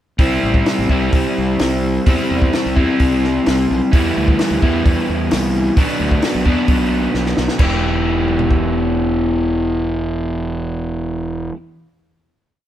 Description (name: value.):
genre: indie rock.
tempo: 131 BPM.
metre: 4/4.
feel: straight.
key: E minor.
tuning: A4 = 440 Hz.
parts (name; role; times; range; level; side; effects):
crunchy overdriven guitar; riff; 0.2-11.6 s; B2 to G4; -17 LUFS; equal; none.
fuzz fingered electric bass; bass; 0.2-11.5 s; E1 to E2; -21 LUFS; equal; overdrive.
compact cocktail drum kit; drums; 0.2-8.6 s; crash cymbal, hi-hat, kick drum, snare drum, toms; -18 LUFS; equal; none.
room: light reverb.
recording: band playing live in one room.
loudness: -14 LUFS.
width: side -11 dB against mid.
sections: 0.2-7.6 pre-chorus; 7.6-11.2 final chord.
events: drum fill 7.2-7.6.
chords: 0.2 C; 3.9 Em7; 5.8 Bm; 7.6 Em.